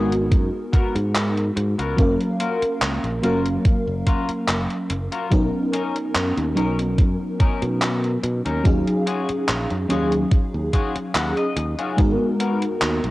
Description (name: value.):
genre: vaporwave.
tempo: 72 BPM.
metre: 4/4.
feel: swing 53% on 16ths.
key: G# dorian.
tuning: A4 = 437 Hz.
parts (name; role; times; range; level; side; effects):
FM electric piano with soft pad layer; accompaniment; 0.0-13.1 s; F#3 to E#5; -22 LUFS; equal; tremolo, ensemble chorus, tape echo.
clean electric guitar; riff; 0.0-12.6 s; B3 to F#5; -30 LUFS; left 4 dB; lush chorus, low-pass filter, tape echo.
modern bright fingered electric bass; bass; 0.0-13.1 s; F#1 to B2; -25 LUFS; equal; none.
gated 80s digital drum machine; drums; 0.1-13.1 s; handclaps, hi-hat; -26 LUFS; equal; gated reverb, cassette tape.
electronic kick drum; drums; 0.3-12.2 s; none; -18 LUFS; equal; cassette tape.
room: light reverb, digital ambience.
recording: home recording on cassette.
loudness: -19 LUFS.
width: side -18 dB against mid.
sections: 0.0-13.1 A section.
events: clean electric guitar fill 10.7-12.0.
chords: 0.0 G#m9; 2.0 F#maj7; 5.3 Bmaj9; 8.7 D#m11; 12.0 G#m9.